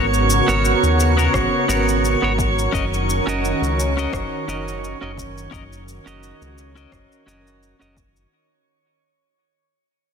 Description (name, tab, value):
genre	sunset chillout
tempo	86 BPM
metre	4/4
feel	swing 54% on 16ths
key	unclear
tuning	A4 = 440 Hz
part	clean electric guitar	accompaniment	0.0-8.0 s	B3 to D#5	-23 LUFS	moving between left 6 dB and right 4 dB	auto-pan, ping-pong delay
part	lush unison pad	sustained chords	0.0-8.3 s	C#3 to A#4	-24 LUFS	equal	chorus
part	round analog bass	bass	0.0-8.3 s	F#1 to D#2	-22 LUFS	equal	tube saturation
part	drifting glass-harmonics texture	texture	0.0-8.3 s	C#5 to C#6	-24 LUFS	right 3 dB	chorus, built-in reverb
part	electronic cabasa and rim click	drums	0.1-8.3 s	none	-29 LUFS	left 2 dB	soft clipping on snare
part	electronic kick drum	drums	1.3-8.1 s	none	-26 LUFS	equal	none
room	moderate lush hall reverb, RT60 3.0 s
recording	dense, heavily limited modern master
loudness	-16 LUFS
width	side -7 dB against mid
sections	0.0-8.3 A section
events	fade-out 0.0-8.3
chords	0.0 G#m11; 2.7 D#m7/F#